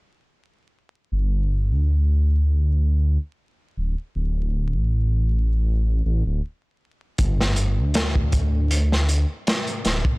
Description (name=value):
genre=trip hop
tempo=79 BPM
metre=4/4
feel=swing 54% on 16ths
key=unclear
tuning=A4 = 440 Hz
part: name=dark detuned saw bass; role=bass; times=1.1-10.0 s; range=D1 to D2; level=-19 LUFS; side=equal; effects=none
part: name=crunchy breakbeat drum kit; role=drums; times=7.2-10.2 s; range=hi-hat, kick drum, snare drum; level=-22 LUFS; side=equal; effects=none
room=little or no reverb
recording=blown-out, overdriven recording, vinyl crackle, overdrive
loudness=-19 LUFS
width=side -25 dB against mid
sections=1.1-10.2 A section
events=none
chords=none